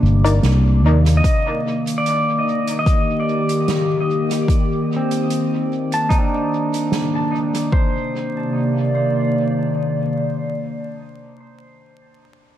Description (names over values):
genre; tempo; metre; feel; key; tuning
ambient dub; 74 BPM; 4/4; swing 54% on 16ths; C dorian; A4 = 440 Hz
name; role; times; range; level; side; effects
warbly tape-like pad; sustained chords; 0.0-11.7 s; C3 to D6; -20 LUFS; equal; chorus, built-in reverb
pedal steel guitar; arpeggios; 0.0-11.7 s; C4 to A5; -23 LUFS; equal; low-pass filter, tape echo
fingered electric bass; bass; 0.0-1.2 s; G1 to Eb2; -13 LUFS; equal; none
filtered dub chord stab; stabs; 0.2-0.5 s; Eb4 to D5; -25 LUFS; left 2 dB; chorus, dub echo
soft-mallet drum kit; drums; 0.3-7.7 s; hi-hat, snare drum; -28 LUFS; right 3 dB; dub echo
electronic kick drum; drums; 1.2-7.9 s; none; -17 LUFS; equal; overdrive
room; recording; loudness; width
moderate spring reverb, RT60 2.0 s; echo-heavy mix, vinyl crackle; -16 LUFS; side -11 dB against mid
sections
0.0-7.7 A section; 7.7-11.0 B section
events
filter sweep on pedal steel guitar 0.0-7.7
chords
0.0 Cm9; 1.2 Ebmaj7; 7.7 Cm9